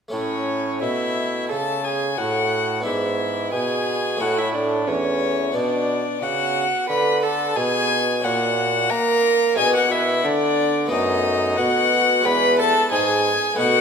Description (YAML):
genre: classical, baroque-style sonata movement with continuo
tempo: 89 BPM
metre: 4/4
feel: straight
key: A major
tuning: A4 = 440 Hz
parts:
  - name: warm violin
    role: melody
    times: 0.1-13.8 s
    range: C#5 to B5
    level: -22 LUFS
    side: left 7 dB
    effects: none
  - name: rich violin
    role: second line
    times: 0.1-13.8 s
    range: C#4 to B4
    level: -24 LUFS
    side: right 6 dB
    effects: none
  - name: harpsichord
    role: accompaniment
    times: 0.1-13.8 s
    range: E2 to G#4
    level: -27 LUFS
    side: left 1 dB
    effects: none
  - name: warm bassoon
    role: bass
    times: 0.1-13.8 s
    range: E2 to A#3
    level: -24 LUFS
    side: right 1 dB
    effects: none
room: moderate scoring stage reverb, RT60 1.8 s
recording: minimal, uncompressed stereo recording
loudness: -18 LUFS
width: side -6 dB against mid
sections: 0.1-13.8 A section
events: none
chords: 0.1 A; 2.8 E7/G#; 4.2 A; 5.5 Bm; 8.2 F#7/A#; 9.6 Bm; 10.9 B7/F#; 12.2 E